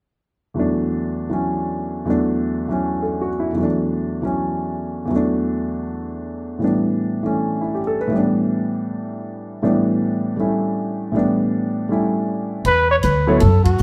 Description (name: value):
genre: modal jazz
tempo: 159 BPM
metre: 4/4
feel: swing 66% on 8ths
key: E dorian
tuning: A4 = 439 Hz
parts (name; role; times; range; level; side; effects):
- warm concert grand piano; accompaniment; 0.5-13.4 s; E2 to C#5; -22 LUFS; equal; none
- upright bass; bass; 12.6-13.8 s; D2 to F#2; -18 LUFS; equal; none
- compact cocktail drum kit; drums; 12.6-13.8 s; hi-hat, kick drum, ride cymbal; -28 LUFS; equal; none
- breathy trumpet; melody; 12.7-13.8 s; F#4 to C#5; -19 LUFS; equal; none
room: wet studio reverb, RT60 0.9 s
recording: heard from further back in the room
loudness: -20 LUFS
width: mono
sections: 0.6-12.7 A section; 12.7-13.8 B section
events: band accent 13.6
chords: 0.6 E9sus4; 6.6 A9sus4; 12.7 E7sus2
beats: | 0.56 0.94 1.32 1.69 | 2.07 2.45 2.83 3.21 | 3.58 3.96 4.34 4.72 | 5.09 5.47 5.85 6.23 | 6.61 6.98 7.36 7.74 | 8.12 8.49 8.87 9.25 | 9.63 10.01 10.38 10.76 | 11.14 11.52 11.90 12.28 | 12.65 13.03 13.41 13.79